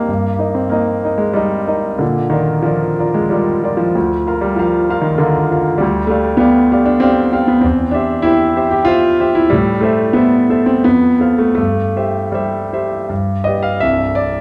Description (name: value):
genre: classical, romantic character piece for solo piano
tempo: 78-101 BPM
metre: 3/4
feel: rubato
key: C major from 5.8 s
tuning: A4 = 440 Hz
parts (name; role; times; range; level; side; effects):
- warm grand piano; solo; 0.0-14.4 s; C1 to F5; -15 LUFS; equal; none
room: wet large studio reverb, RT60 1.3 s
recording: dark, warm production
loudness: -15 LUFS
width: mono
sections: 0.0-13.8 A section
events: none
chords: 0.1 Eb/G; 2.0 Bb; 4.0 Bb/D; 5.8 G5/D; 7.6 C/E; 9.5 Am; 10.8 F; 11.6 C/G; 13.1 G; 13.8 C